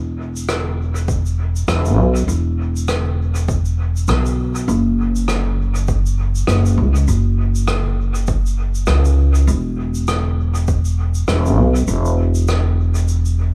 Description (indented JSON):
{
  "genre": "ambient dub",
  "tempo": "100 BPM",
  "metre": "4/4",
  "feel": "swing 58% on 16ths",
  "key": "unclear",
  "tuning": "A4 = 440 Hz",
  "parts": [
    { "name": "upright bass", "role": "bass", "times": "0.0-13.5 s", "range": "E1 to C#2", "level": "-18 LUFS", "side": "equal", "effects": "none" },
    { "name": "shaker and rim click", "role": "drums", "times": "0.4-13.4 s", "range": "none", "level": "-28 LUFS", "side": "equal", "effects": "dub echo" },
    { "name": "electronic kick drum", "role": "drums", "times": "1.1-10.8 s", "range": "none", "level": "-24 LUFS", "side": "equal", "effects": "overdrive" }
  ],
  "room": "little or no reverb",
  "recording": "echo-heavy mix, small room ambience",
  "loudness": "-18 LUFS",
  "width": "mono",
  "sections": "0.0-13.5 A section",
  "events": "kick drops out 11.9-13.5",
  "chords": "none"
}